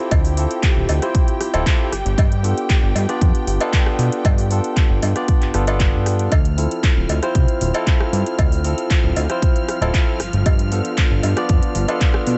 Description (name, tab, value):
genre	nu-disco, nu disco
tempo	116 BPM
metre	4/4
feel	straight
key	D dorian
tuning	A4 = 439 Hz
part	barky tine electric piano	accompaniment	0.0-12.4 s	B3 to D5	-26 LUFS	equal	sidechain pumping, delay
part	muted studio string section	sustained chords	0.0-12.4 s	F3 to F6	-32 LUFS	equal	sidechain pumping
part	fat analog bass	bass	0.1-12.4 s	D1 to B2	-22 LUFS	equal	none
part	electronic kick drum	drums	0.1-12.1 s	none	-19 LUFS	equal	studio reverb
part	house drum kit	drums	0.1-12.4 s	handclaps, hi-hat, rim click	-29 LUFS	equal	studio reverb
part	cowbell	percussion	0.1-12.0 s	none	-28 LUFS	equal	none
room	digital ambience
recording	nothing above 8.0 kHz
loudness	-18 LUFS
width	mono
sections	0.0-12.4 A section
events	none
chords	0.0 Dm7; 1.9 G7; 6.3 Dm7; 10.2 G7